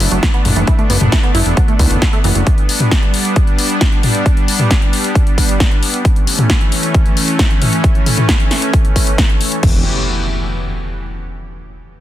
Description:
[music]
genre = uplifting trance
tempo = 134 BPM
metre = 4/4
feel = straight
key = E dorian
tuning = A4 = 439 Hz
[part]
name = supersaw pad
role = sustained chords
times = 0.0-9.8 s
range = E3 to G4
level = -19 LUFS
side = equal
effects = sidechain pumping
[part]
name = fat analog bass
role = bass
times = 0.0-2.4, 9.6-9.8 s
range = E1 to C#2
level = -15 LUFS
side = equal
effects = tube saturation, sidechain pumping
[part]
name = punchy analog drum machine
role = drums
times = 0.0-9.7 s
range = crash cymbal, hi-hat, snare drum, toms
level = -17 LUFS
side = left 1 dB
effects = sidechain pumping on hats, sidechain pumping on cymbals, sidechain pumping on toms
[part]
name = tight sequenced synth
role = arpeggios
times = 0.1-2.4 s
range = E2 to E4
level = -22 LUFS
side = right 4 dB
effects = chorus, sidechain pumping, dub echo
[part]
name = electronic kick drum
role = drums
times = 0.2-9.7 s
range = none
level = -13 LUFS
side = equal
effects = overdrive
[part]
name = impact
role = sound effects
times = 9.6-11.4 s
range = none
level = -21 LUFS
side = equal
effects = none
[sound]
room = little or no reverb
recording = dense, heavily limited modern master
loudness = -11 LUFS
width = side -13 dB against mid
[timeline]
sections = 0.0-9.6 A section; 9.6-11.4 B section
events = none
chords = 0.0 Bm7; 2.5 G; 6.0 A; 9.6 Emadd9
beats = 0.23 | 0.68 1.12 1.57 2.02 | 2.47 2.92 3.36 3.81 | 4.26 4.71 5.15 5.60 | 6.05 6.50 6.95 7.39 | 7.84 8.29 8.74 9.18 | 9.63 10.08 10.53 10.97

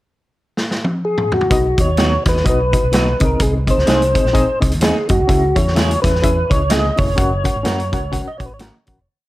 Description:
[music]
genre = uptempo 1960s-style soul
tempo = 127 BPM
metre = 4/4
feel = swing 59% on 8ths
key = B major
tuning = A4 = 444 Hz
[part]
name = vintage drum kit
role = drums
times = 0.6-9.0 s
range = hi-hat, kick drum, snare drum, toms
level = -18 LUFS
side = equal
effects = none
[part]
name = tonewheel organ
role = melody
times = 1.0-8.6 s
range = F#4 to D#5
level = -19 LUFS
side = equal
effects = overdrive, chorus vibrato, slow rotary speaker, analog delay
[part]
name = reed electric piano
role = accompaniment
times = 1.5-9.0 s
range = B2 to F#5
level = -23 LUFS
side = left 3 dB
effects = fast tremolo
[part]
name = fingered electric bass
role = bass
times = 1.5-9.1 s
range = E#1 to F#2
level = -19 LUFS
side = equal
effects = none
[part]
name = congas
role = percussion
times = 1.5-9.0 s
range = none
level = -31 LUFS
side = right 3 dB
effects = none
[part]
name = electric guitar through a small old amp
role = stabs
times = 2.0-8.7 s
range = F#3 to A#4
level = -24 LUFS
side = right 4 dB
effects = phaser
[sound]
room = light reverb, small room ambience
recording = none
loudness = -14 LUFS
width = side -16 dB against mid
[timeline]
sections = 0.0-1.5 pickup bar; 1.5-9.1 verse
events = drum fill 0.6-1.5; fade-out 7.2-9.1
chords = 0.0 N.C.; 1.5 B; 3.2 G#/B#; 5.3 C#m; 7.2 F#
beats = 0.09 0.56 1.03 | 1.51 1.98 2.45 2.93 | 3.40 3.87 4.34 4.82 | 5.29 5.76 6.23 6.71 | 7.18 7.65 8.13 8.60

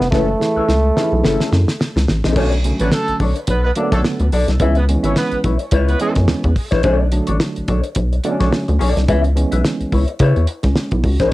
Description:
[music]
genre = funk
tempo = 107 BPM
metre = 4/4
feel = swing 56% on 16ths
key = B dorian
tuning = A4 = 440 Hz
[part]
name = breathy trombone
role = melody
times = 0.0-2.0 s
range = A3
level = -19 LUFS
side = right 2 dB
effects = cassette tape
[part]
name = hollow-body jazz guitar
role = accompaniment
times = 0.0-11.3 s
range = C#4 to E5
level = -21 LUFS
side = left 4 dB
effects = wah
[part]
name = rubbery square bass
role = bass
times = 0.0-11.3 s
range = E#1 to C#3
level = -16 LUFS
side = equal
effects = transformer saturation
[part]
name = damped 70s drum kit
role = drums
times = 0.0-11.3 s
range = crash cymbal, hi-hat, kick drum, snare drum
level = -20 LUFS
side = equal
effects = none
[part]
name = tine electric piano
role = stabs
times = 0.1-11.3 s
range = C#3 to G#4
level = -22 LUFS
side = right 2 dB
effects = medium stereo tremolo
[part]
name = mellow horn section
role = second line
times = 2.8-6.1 s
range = G#3 to C#5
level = -24 LUFS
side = right 2 dB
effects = tape echo
[sound]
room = light reverb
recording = home recording on cassette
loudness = -14 LUFS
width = side -17 dB against mid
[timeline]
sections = 0.0-2.4 A section; 2.4-11.3 B section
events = drum fill 0.1-2.4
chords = 0.0 F#m7; 2.4 Bm9; 4.6 C#m7; 6.8 Bm9; 9.1 C#m7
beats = | 0.12 0.68 1.24 1.80 | 2.36 2.92 3.48 4.04 | 4.60 5.16 5.72 6.28 | 6.84 7.40 7.96 8.52 | 9.08 9.64 10.20 10.76 | 11.32

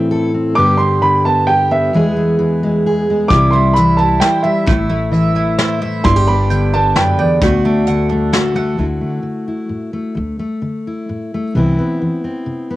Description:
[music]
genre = acoustic folk duo or small band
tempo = 131 BPM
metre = 3/4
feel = straight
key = D mixolydian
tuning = A4 = 440 Hz
[part]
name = dark upright piano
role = melody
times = 0.0-8.3 s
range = D5 to D6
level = -16 LUFS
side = right 2 dB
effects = cassette tape
[part]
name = fingerpicked steel-string acoustic guitar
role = accompaniment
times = 0.0-12.8 s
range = D2 to A4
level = -16 LUFS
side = left 1 dB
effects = none
[part]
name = mandolin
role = arpeggios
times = 3.3-8.8 s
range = G3 to G5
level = -22 LUFS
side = right 4 dB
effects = none
[part]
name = upright bass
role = bass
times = 3.3-11.8 s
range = G1 to D2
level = -18 LUFS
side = equal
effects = none
[part]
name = soft brush drum kit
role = drums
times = 3.3-8.4 s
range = hi-hat, kick drum, snare drum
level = -18 LUFS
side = equal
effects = cassette tape
[sound]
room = light reverb, small room ambience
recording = home recording on cassette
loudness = -12 LUFS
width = side -16 dB against mid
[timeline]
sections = 0.0-8.8 A section; 8.8-12.8 B section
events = none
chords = 0.0 Am; 0.6 G; 1.9 E; 3.3 C; 4.7 Am; 6.0 G; 7.4 D; 8.8 Dadd9; 11.5 Cmaj7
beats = 0.12 | 0.57 1.03 1.48 | 1.94 2.40 2.85 | 3.31 3.77 4.22 | 4.68 5.13 5.59 | 6.05 6.50 6.96 | 7.42 7.87 8.33 | 8.79 9.25 9.71 | 10.17 10.63 11.09 | 11.54 12.00 12.46

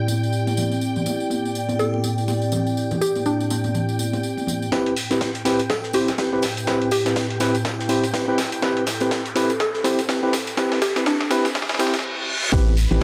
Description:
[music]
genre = deep house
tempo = 123 BPM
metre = 4/4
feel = swing 59% on 16ths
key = A minor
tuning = A4 = 441 Hz
[part]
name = hollow soft pad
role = sustained chords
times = 0.0-13.0 s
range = A2 to D5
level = -29 LUFS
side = equal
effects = chorus, sidechain pumping
[part]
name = string machine, violins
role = texture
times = 0.0-13.0 s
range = G5 to B5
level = -37 LUFS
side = equal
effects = ensemble chorus, sidechain pumping
[part]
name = congas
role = percussion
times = 0.1-4.6, 12.7-13.0 s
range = none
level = -31 LUFS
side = equal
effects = none
[part]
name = tambourine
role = percussion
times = 0.1-13.0 s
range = none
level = -37 LUFS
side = equal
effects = none
[part]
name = mallet-like synth pluck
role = melody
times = 1.8-11.6 s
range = D4 to A4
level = -27 LUFS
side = equal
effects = chorus, tape echo
[part]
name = tine electric piano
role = stabs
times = 4.7-13.0 s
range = C4 to C5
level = -24 LUFS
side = equal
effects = sidechain pumping, low-pass filter, tape echo
[part]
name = dusty soul sampler-style drum kit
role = drums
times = 4.7-13.0 s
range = hi-hat, snare drum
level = -29 LUFS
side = equal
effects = high-pass filter on snare, vintage 12-bit sampler grit, high-pass filter on hats, high-pass filter on room
[part]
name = electronic kick drum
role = drums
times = 4.7-12.6 s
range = none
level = -28 LUFS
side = equal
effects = high-pass filter on kick, vintage 12-bit sampler grit, high-pass filter on room
[part]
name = gated 80s drum kit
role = drums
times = 4.7-13.0 s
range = hi-hat, snare drum, tambourine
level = -38 LUFS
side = equal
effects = high-pass filter on hats, vintage 12-bit sampler grit, high-pass filter on snare, high-pass filter on perc, high-pass filter on room
[part]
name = riser, reverse cymbal and downlifter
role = sound effects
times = 6.6-13.0 s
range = none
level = -33 LUFS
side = equal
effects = none
[part]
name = organ-like FM bass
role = bass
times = 12.5-13.0 s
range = A1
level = -21 LUFS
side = equal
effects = sidechain pumping
[sound]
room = light reverb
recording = high-pass filter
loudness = -22 LUFS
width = mono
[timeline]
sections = 0.0-4.7 A section; 4.7-12.5 B section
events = build-up 4.7-12.5; drum fill 4.7-12.0; filter sweep on tine electric piano 4.7-12.5; filter sweep on analog synth pad 4.7-12.5; reverse cymbal 11.6-12.5; break 12.0-12.5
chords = 0.0 Am7; 4.7 Am9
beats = 0.33 | 0.82 1.31 1.79 2.28 | 2.77 3.26 3.75 4.23 | 4.72 5.21 5.70 6.18 | 6.67 7.16 7.65 8.14 | 8.62 9.11 9.60 10.09 | 10.57 11.06 11.55 12.04 | 12.53 13.01

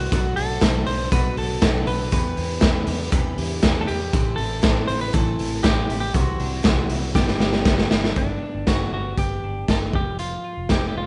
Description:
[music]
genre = jangly indie pop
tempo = 119 BPM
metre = 4/4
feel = straight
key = G major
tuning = A4 = 442 Hz
[part]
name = clean electric guitar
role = melody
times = 0.0-11.1 s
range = D4 to C5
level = -31 LUFS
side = equal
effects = none
[part]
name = picked twelve-string acoustic guitar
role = accompaniment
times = 0.0-8.2 s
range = G2 to G4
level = -34 LUFS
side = equal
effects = none
[part]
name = twelve-string electric guitar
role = arpeggios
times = 0.0-11.1 s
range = E3 to A4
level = -37 LUFS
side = equal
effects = none
[part]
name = vintage muted fingered electric bass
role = bass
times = 0.0-11.1 s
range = F1 to E2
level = -30 LUFS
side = equal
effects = none
[part]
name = raw garage drum kit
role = drums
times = 0.1-10.8 s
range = hi-hat, kick drum, snare drum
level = -23 LUFS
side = equal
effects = none
[part]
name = group handclap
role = percussion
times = 0.6-7.8 s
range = none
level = barely audible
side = none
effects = none
[sound]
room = little or no reverb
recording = rough home demo mix, nothing above 11.0 kHz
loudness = -22 LUFS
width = mono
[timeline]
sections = 0.0-8.2 A section; 8.2-11.1 B section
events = drum fill 7.2-8.2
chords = 0.1 Bm7; 2.1 Em7; 4.1 Am; 6.1 C; 7.2 G; 9.9 F5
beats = | 0.12 0.63 1.13 1.63 | 2.13 2.63 3.13 3.63 | 4.14 4.64 5.14 5.64 | 6.15 6.65 7.16 7.66 | 8.17 8.67 9.18 9.68 | 10.19 10.70

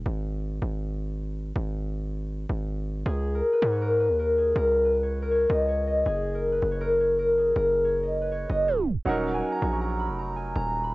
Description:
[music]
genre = hip hop, trap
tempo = 160 BPM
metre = 4/4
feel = half-time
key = Eb minor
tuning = A4 = 440 Hz
[part]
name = distorted 808-style bass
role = bass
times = 0.0-10.9 s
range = Eb1 to Ab2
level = -29 LUFS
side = equal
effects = distortion
[part]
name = concert harp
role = melody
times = 3.1-10.9 s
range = Ab4 to Db6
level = -24 LUFS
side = left 1 dB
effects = low-pass filter, cassette tape
[part]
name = warm concert grand piano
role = accompaniment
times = 9.0-10.9 s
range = Gb3 to Bb4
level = -30 LUFS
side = right 2 dB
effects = low-pass filter, cassette tape
[sound]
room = light reverb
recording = home recording on cassette, tape stop, nothing above 8.0 kHz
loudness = -23 LUFS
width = side -20 dB against mid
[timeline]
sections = 0.0-9.1 A section; 9.1-10.9 B section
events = break 0.0-3.1; tape stop 8.7-9.1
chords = 0.1 N.C.; 3.1 Db5; 6.1 Gb5; 9.1 Ebm7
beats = | 0.06 0.43 0.81 1.18 | 1.56 1.93 2.31 2.68 | 3.06 3.43 3.81 4.18 | 4.56 4.93 5.31 5.68 | 6.06 6.43 6.81 7.18 | 7.56 7.93 8.31 8.68 | 9.06 9.43 9.81 10.18 | 10.56 10.93

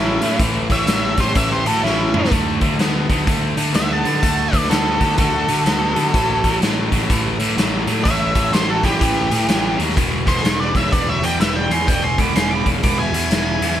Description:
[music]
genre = blues rock power trio and southern rock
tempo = 125 BPM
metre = 4/4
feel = swing 63% on 8ths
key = A mixolydian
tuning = A4 = 445 Hz
[part]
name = octave-fuzz lead guitar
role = melody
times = 0.0-13.8 s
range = E4 to D6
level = -21 LUFS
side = equal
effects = distortion, plate reverb
[part]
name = smooth overdriven lead guitar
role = second line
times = 0.0-13.8 s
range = C#4 to B5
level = -27 LUFS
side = right 6 dB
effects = none
[part]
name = distorted electric guitar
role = riff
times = 0.0-13.8 s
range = E2 to B3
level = -22 LUFS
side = left 1 dB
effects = overdrive
[part]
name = fuzz picked electric bass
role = bass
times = 0.0-13.8 s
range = E1 to D3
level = -23 LUFS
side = equal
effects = overdrive
[part]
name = raw garage drum kit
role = drums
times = 0.2-13.7 s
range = hi-hat, kick drum, snare drum, toms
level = -20 LUFS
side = equal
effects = none
[sound]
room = light reverb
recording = none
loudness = -15 LUFS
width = side -11 dB against mid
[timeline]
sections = 0.0-13.8 A section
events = drum fill 1.8-2.3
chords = 0.0 A; 2.3 D; 6.1 A7(no3); 10.0 E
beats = | 0.40 0.87 1.35 1.83 | 2.31 2.79 3.27 3.74 | 4.22 4.70 5.18 5.66 | 6.13 6.61 7.09 7.57 | 8.05 8.52 9.00 9.48 | 9.96 10.44 10.92 11.40 | 11.88 12.36 12.84 13.32 | 13.79

